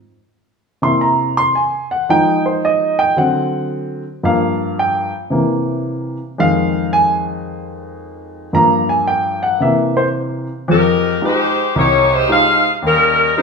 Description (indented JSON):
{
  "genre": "jazz",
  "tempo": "112 BPM",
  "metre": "4/4",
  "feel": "swing 67% on 8ths",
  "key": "F minor",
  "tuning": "A4 = 440 Hz",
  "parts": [
    { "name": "warm baby grand piano", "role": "accompaniment", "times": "0.8-13.4 s", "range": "C2 to C6", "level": "-15 LUFS", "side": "equal", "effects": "none" },
    { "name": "warm saxophone section", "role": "melody", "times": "10.7-13.4 s", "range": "G3 to F5", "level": "-12 LUFS", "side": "left 2 dB", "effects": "none" }
  ],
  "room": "wet large studio reverb, RT60 1.2 s",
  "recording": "band playing live in one room",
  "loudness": "-13 LUFS",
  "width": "side -5 dB against mid",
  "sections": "0.0-10.7 A section; 10.7-13.4 B section",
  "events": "grand piano solo 0.0-10.7",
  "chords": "0.0 Caug7; 2.1 Fm7; 3.2 D7; 4.2 Gm7; 5.3 C7; 6.4 Fm7; 8.5 Gm7; 9.6 C7; 10.7 Fm9; 12.8 Eb7"
}